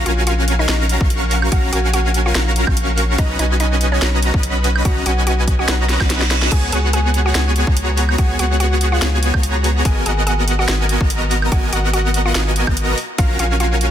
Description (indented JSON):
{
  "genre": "future bass",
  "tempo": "144 BPM",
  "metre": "4/4",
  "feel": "swing 54% on 16ths, half-time",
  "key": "F# major",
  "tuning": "A4 = 440 Hz",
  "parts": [
    { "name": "mallet-like synth pluck", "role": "melody", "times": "0.0-13.9 s", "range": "C#4 to G#5", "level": "-25 LUFS", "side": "equal", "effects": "chorus, sidechain pumping, ping-pong delay" },
    { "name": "dense compressed supersaw", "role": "riff", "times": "0.0-13.9 s", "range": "B3 to C#6", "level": "-20 LUFS", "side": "equal", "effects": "sidechain pumping" },
    { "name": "saturated sub bass", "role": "bass", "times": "0.0-13.9 s", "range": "G#1 to C#2", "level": "-18 LUFS", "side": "equal", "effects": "sidechain pumping" },
    { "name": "trap drum kit", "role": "drums", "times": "0.1-13.9 s", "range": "crash cymbal, hi-hat, snare drum, woodblock", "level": "-23 LUFS", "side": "right 1 dB", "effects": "overdrive, studio reverb" },
    { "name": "electronic kick drum", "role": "drums", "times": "1.0-13.3 s", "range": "none", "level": "-17 LUFS", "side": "equal", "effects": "overdrive, studio reverb" },
    { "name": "reverse cymbal", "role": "sound effects", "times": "5.9-6.5 s", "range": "none", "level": "-28 LUFS", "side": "right 6 dB", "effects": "none" }
  ],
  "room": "little or no reverb",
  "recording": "dense, heavily limited modern master",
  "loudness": "-14 LUFS",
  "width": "side -10 dB against mid",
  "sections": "0.0-13.9 A section",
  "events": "reverse cymbal 5.9-6.5; drum fill 5.9-6.5",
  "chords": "0.0 F#maj7/A#; 3.2 Bmaj9; 6.5 C#7sus4; 9.9 G#m9; 13.0 F#maj7/A#",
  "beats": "0.27 0.69 1.10 | 1.52 1.94 2.35 2.77 | 3.19 3.60 4.02 4.43 | 4.85 5.27 5.68 6.10 | 6.52 6.93 7.35 7.77 | 8.19 8.60 9.02 9.44 | 9.85 10.27 10.69 11.10 | 11.52 11.94 12.35 12.77 | 13.19 13.60"
}